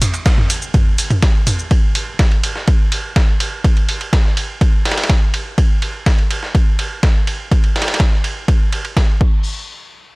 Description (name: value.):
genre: techno.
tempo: 124 BPM.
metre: 4/4.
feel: straight.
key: none.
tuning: none.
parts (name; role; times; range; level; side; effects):
dusty soul sampler-style drum kit; drums; 0.0-9.1 s; ride cymbal, snare drum; -23 LUFS; right 1 dB; overdrive, high-pass filter on cymbals, high-pass filter on snare.
punchy analog drum machine; drums; 0.0-9.3 s; crash cymbal, hi-hat, shaker, toms; -21 LUFS; equal; overdrive, low-pass filter on toms, low-pass filter on hats, low-pass filter on perc, low-pass filter on cymbals.
electronic kick drum; drums; 0.3-9.3 s; none; -13 LUFS; equal; overdrive.
room: little or no reverb.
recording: dry, gritty hardware recording.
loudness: -13 LUFS.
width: side -27 dB against mid.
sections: 0.0-9.5 A section.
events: filter sweep on drum 0.0-9.5.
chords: none.